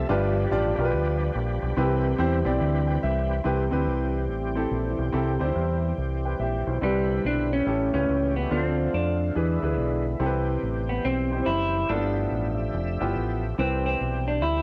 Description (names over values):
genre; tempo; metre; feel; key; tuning
gospel; 142 BPM; 4/4; swing 64% on 8ths; C major; A4 = 442 Hz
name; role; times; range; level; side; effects
clear grand piano; accompaniment; 0.0-14.2 s; G2 to G5; -30 LUFS; equal; cassette tape
overdriven tonewheel organ; sustained chords; 0.0-14.6 s; D3 to E5; -35 LUFS; equal; slow rotary speaker, chorus vibrato, cassette tape
deep dub fingered electric bass; bass; 0.0-14.6 s; F1 to F2; -29 LUFS; equal; tube saturation
dark French horn section; sustained chords; 3.5-6.8 s; C4 to G4; -40 LUFS; equal; none
semi-hollow electric guitar; melody; 6.8-14.6 s; G3 to E4; -29 LUFS; equal; warbly pitch drift
room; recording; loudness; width
light reverb; home recording on cassette; -25 LUFS; mono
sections
0.0-3.5 A section; 3.5-6.8 B section; 6.8-14.6 C section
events
grand piano fill 2.6-3.5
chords
0.1 G7; 1.8 Cmaj7; 6.8 Cmaj9; 7.7 A7; 8.5 Dm7; 9.4 E7; 10.2 Cmaj7; 11.9 G13; 13.6 Cmaj7